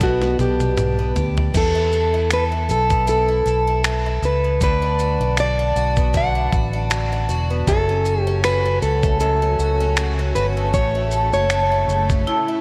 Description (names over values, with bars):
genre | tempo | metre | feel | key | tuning
acoustic pop | 78 BPM | 4/4 | swing 55% on 16ths | unclear | A4 = 440 Hz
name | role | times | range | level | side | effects
fingerpicked plugged-in steel-string acoustic guitar | melody | 0.0-12.1 s | F#4 to F#5 | -23 LUFS | equal | slapback echo, analog delay
picked twelve-string acoustic guitar | accompaniment | 0.0-12.6 s | F#2 to B4 | -27 LUFS | equal | slapback echo
fingered electric bass | bass | 0.0-12.2 s | E1 to E2 | -24 LUFS | equal | none
dusty soul sampler-style drum kit | drums | 0.0-12.3 s | crash cymbal, finger snaps, kick drum, shaker, snare drum, toms | -25 LUFS | equal | none
shimmering ambient pad | sustained chords | 9.0-12.6 s | C#3 to F#4 | -34 LUFS | equal | chorus, built-in reverb, phaser
vibraphone with hard mallets | second line | 12.3-12.6 s | E4 | -24 LUFS | equal | none
room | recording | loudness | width
light reverb, digital ambience | none | -19 LUFS | mono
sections
0.0-1.5 A section; 1.5-12.6 B section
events
drum fill 0.0-1.5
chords
0.0 G/B; 1.5 Esus4; 4.6 Bm; 7.7 F#m; 10.7 A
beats
0.01 0.78 | 1.54 2.31 3.08 3.84 | 4.61 5.38 6.14 6.91 | 7.67 8.44 9.21 9.97 | 10.74 11.50 12.27